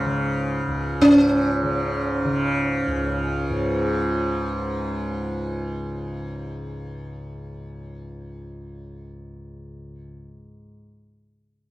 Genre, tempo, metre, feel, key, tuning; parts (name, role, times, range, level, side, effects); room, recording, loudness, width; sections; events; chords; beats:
indian classical, Hindustani; free time; A4 = 442 Hz
sitar; melody; 0.0-4.9 s; Db4; -22 LUFS; equal
tanpura; drone; 0.0-10.6 s; Db2 to Db3; -26 LUFS; equal
little or no reverb; dry, close 1970s-style studio recording; -20 LUFS; side -16 dB against mid
0.0-1.0 A section; 1.0-4.1 B section
free time